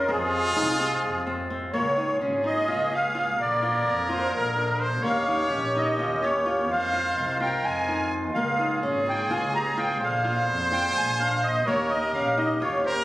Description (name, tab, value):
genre	contemporary instrumental, chamber music in an uneven meter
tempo	254 BPM (eighths)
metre	7/8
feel	straight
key	unclear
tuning	A4 = 444 Hz
part	musette accordion	melody	0.0-13.0 s	Ab4 to Bb5	-26 LUFS	equal	none
part	warm woodwind section	sustained chords	0.0-13.0 s	C3 to Ab4	-32 LUFS	equal	none
part	flamenco guitar	arpeggios	0.0-13.0 s	Bb3 to G4	-31 LUFS	left 1 dB	none
part	bright trumpet	second line	0.1-13.0 s	F4 to Db5	-28 LUFS	equal	none
part	clear double bass	bass	0.1-13.0 s	Ab1 to F2	-33 LUFS	equal	none
room	wet recital hall reverb, RT60 1.4 s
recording	recorded on a phone in the room, club reverb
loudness	-22 LUFS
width	side -16 dB against mid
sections	0.0-1.7 A section; 1.7-13.0 B section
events	none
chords	0.1 Fm; 1.7 Db6; 3.4 Bb7; 5.0 Eb7; 6.7 Fm7; 8.4 Db6; 10.0 Bb7; 11.7 Eb7